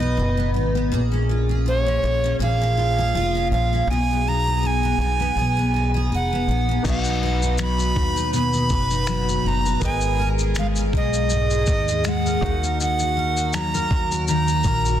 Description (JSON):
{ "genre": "acoustic pop", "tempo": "81 BPM", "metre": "4/4", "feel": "swing 55% on 16ths", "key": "unclear", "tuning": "A4 = 436 Hz", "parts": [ { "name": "bright alto recorder", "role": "melody", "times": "0.0-15.0 s", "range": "Db5 to B5", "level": "-24 LUFS", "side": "right 2 dB", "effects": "digital delay" }, { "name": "picked steel-string acoustic guitar", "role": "accompaniment", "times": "0.0-15.0 s", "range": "Ab2 to B4", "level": "-24 LUFS", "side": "left 1 dB", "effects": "double-tracked left and right" }, { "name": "upright bass", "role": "bass", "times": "0.0-15.0 s", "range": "F1 to D#2", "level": "-23 LUFS", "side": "equal", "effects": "none" }, { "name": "clear concert grand piano", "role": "accompaniment", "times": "6.8-15.0 s", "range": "B3 to Gb5", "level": "-34 LUFS", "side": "left 4 dB", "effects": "none" }, { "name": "dusty soul sampler-style drum kit", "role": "drums", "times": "6.8-15.0 s", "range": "crash cymbal, finger snaps, kick drum, shaker", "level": "-26 LUFS", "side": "equal", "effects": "soft clipping on snare" } ], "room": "light reverb, studio reverb", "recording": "dense, heavily limited modern master", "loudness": "-19 LUFS", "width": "side -11 dB against mid", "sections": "0.0-6.9 A section; 6.9-15.0 B section", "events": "none", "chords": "0.0 B; 0.9 Bbm7; 6.9 B; 9.8 Abmadd9; 12.4 Ebm", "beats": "0.17 | 0.91 1.65 2.40 3.14 | 3.88 4.62 5.37 6.11 | 6.85 7.60 8.34 9.08 | 9.82 10.57 11.31 12.05 | 12.79 13.54 14.28" }